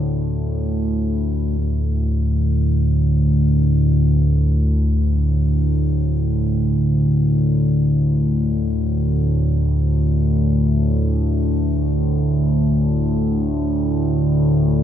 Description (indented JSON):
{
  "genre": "ambient",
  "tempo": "free time",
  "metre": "none",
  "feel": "none",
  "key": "unclear",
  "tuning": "A4 = 439 Hz",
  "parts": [
    { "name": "analog drone", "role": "solo", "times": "0.0-14.8 s", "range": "D2 to A2", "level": "-16 LUFS", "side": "equal", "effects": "chorus, ping-pong delay" }
  ],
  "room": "wet cathedral reverb, RT60 5.3 s",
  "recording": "none",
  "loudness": "-16 LUFS",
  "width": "side -10 dB against mid",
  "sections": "0.0-1.6 A section; 1.6-14.8 B section",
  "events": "none",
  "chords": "0.0 D5"
}